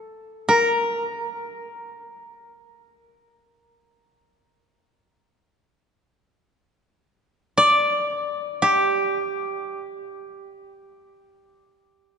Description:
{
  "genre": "japanese traditional, Japanese chamber music",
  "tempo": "free time",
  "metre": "none",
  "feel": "none",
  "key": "G minor",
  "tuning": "A4 = 440 Hz",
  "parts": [
    { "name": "koto", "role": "solo", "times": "0.0-11.8 s", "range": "G4 to D5", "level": "-20 LUFS", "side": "equal", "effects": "none" }
  ],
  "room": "wet church reverb, RT60 3.4 s",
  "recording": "nothing above 10.6 kHz",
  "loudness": "-20 LUFS",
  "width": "side -6 dB against mid",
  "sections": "0.0-12.1 A section",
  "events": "none",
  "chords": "none"
}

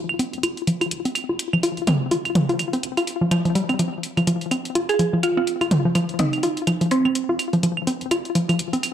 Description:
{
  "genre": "minimal techno",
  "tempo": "125 BPM",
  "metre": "4/4",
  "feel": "swing 58% on 16ths",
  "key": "F minor",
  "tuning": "A4 = 440 Hz",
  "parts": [
    { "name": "punchy sub bass", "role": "bass", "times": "0.0-8.7 s", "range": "Eb1 to C2", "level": "-42 LUFS", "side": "left 1 dB", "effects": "none" },
    { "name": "electronic claves and toms", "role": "percussion", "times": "0.1-8.9 s", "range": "none", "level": "-24 LUFS", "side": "right 2 dB", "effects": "overdrive, tape echo" },
    { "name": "hollow square pluck", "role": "riff", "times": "0.2-8.8 s", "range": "F3 to F4", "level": "-22 LUFS", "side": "left 1 dB", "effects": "chorus, ping-pong delay" },
    { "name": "electronic hi-hat", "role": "drums", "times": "0.2-8.9 s", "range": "none", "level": "-30 LUFS", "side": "left 1 dB", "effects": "none" },
    { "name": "mallet-like synth pluck", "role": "melody", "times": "4.9-7.6 s", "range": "C4 to Ab4", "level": "-23 LUFS", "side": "right 3 dB", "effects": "chorus, tape echo" }
  ],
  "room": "moderate plate reverb, RT60 1.2 s, digital ambience",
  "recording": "dark, warm production",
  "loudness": "-19 LUFS",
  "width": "side -10 dB against mid",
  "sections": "0.0-8.9 A section",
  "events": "filter sweep on synth arpeggio sound 0.0-8.9",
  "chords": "0.0 F5"
}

